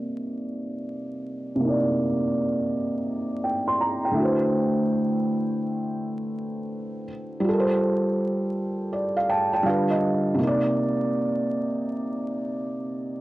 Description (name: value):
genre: hip hop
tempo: 82 BPM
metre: 4/4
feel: swing 64% on 16ths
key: C dorian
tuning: A4 = 439 Hz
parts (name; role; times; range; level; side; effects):
- felt-muted upright piano; solo; 0.0-13.2 s; C3 to C6; -23 LUFS; equal; cassette tape, low-pass filter
room: light reverb, studio reverb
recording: dry, gritty hardware recording, vinyl crackle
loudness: -23 LUFS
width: side -17 dB against mid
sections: 0.0-10.4 A section; 10.4-13.2 B section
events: filter sweep on felt piano 0.0-10.4; felt piano fill 8.9-10.4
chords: 0.0 Cm9; 4.2 D13; 7.5 G9sus4; 9.7 G7; 10.4 Cm9